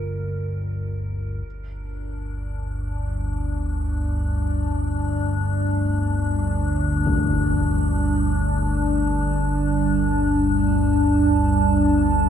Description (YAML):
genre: dark ambient drone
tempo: free time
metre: none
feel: none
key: G minor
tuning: A4 = 438 Hz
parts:
  - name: dark analog pad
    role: sustained chords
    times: 0.0-12.3 s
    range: G3 to A5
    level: -24 LUFS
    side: right 1 dB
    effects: chorus, phaser
  - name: warm concert grand piano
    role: arpeggios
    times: 0.0-12.3 s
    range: Db4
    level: -58 LUFS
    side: right 2 dB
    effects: none
  - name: analog drone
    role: drone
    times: 0.0-12.3 s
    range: G1 to D2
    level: -22 LUFS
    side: equal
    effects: lush chorus
  - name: icy glass pad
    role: texture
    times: 0.0-12.3 s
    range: D4 to Bb4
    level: -29 LUFS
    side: left 4 dB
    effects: chorus, built-in reverb
  - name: impact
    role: percussion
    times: 7.1-7.3 s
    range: none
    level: -31 LUFS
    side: left 1 dB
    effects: low-pass filter on sfx
room: moderate huge ambient reverb, RT60 6.9 s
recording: none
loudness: -20 LUFS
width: side -8 dB against mid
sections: 0.0-1.5 A section; 1.5-12.3 B section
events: filter sweep on synth drone 0.0-1.5, 1.5-12.3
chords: 0.0 Bbm; 1.5 G5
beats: free time